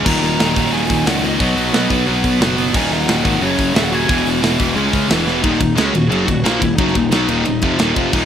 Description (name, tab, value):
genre	heavy metal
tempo	178 BPM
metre	4/4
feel	straight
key	Eb phrygian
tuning	A4 = 440 Hz
part	heavy high-gain guitar	riff	0.0-8.3 s	Eb2 to Db4	-20 LUFS	right 9 dB	distortion
part	thick fuzz guitar	riff	0.0-8.3 s	Eb2 to Ab4	-20 LUFS	equal	distortion
part	tight distorted guitar	riff	0.0-8.3 s	Eb2 to Db4	-20 LUFS	left 9 dB	distortion
part	fuzz picked electric bass	bass	0.0-8.3 s	Eb1 to Db2	-23 LUFS	equal	overdrive
part	high-gain lead guitar	melody	0.1-8.3 s	Eb4 to Bb5	-24 LUFS	left 1 dB	distortion
part	tight metal drum kit	drums	0.1-8.2 s	crash cymbal, hi-hat, kick drum, ride cymbal, snare drum, splash cymbal	-20 LUFS	equal	none
room	small room ambience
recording	rough home demo mix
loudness	-13 LUFS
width	side -9 dB against mid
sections	0.0-5.4 A section; 5.4-8.3 B section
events	drum fill 5.3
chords	0.1 Ebm; 1.4 B; 2.7 Ebm; 3.4 Gb; 4.1 E; 4.8 Dbm; 5.1 E; 5.4 Ebm